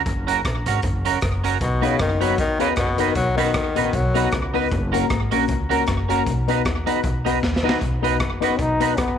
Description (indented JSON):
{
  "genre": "ska",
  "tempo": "155 BPM",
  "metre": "4/4",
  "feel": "swing 55% on 8ths",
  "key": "B major",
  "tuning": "A4 = 440 Hz",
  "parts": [
    { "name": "upright bass", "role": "bass", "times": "0.1-9.2 s", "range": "F#1 to D#2", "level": "-25 LUFS", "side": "equal", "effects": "none" },
    { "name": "raw garage drum kit", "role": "drums", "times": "0.1-9.1 s", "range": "hi-hat, kick drum, rim click, snare drum", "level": "-25 LUFS", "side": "equal", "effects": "slapback echo" },
    { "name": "clean electric guitar", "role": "accompaniment", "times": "0.3-8.9 s", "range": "C#4 to B4", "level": "-24 LUFS", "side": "right 9 dB", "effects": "analog chorus" },
    { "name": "bright tenor saxophone", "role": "melody", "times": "1.6-4.3 s", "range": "B2 to F#3", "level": "-23 LUFS", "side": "left 3 dB", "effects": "none" },
    { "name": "dark upright piano", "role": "stabs", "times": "1.8-9.0 s", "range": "A#3 to B4", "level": "-25 LUFS", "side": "left 11 dB", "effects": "slapback echo" },
    { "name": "brilliant trombone", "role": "melody", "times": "8.4-9.2 s", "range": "B3 to D#4", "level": "-22 LUFS", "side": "left 2 dB", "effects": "none" }
  ],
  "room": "moderate spring reverb, RT60 2.0 s",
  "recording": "1960s-style stereo with parts hard left and right",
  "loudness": "-18 LUFS",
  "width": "side -8 dB against mid",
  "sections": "0.0-7.8 A section; 7.8-9.2 B section",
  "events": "drum fill 7.4-7.8; trombone solo 7.8-9.2",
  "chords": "0.0 F#; 1.6 B; 4.7 F#; 6.3 B"
}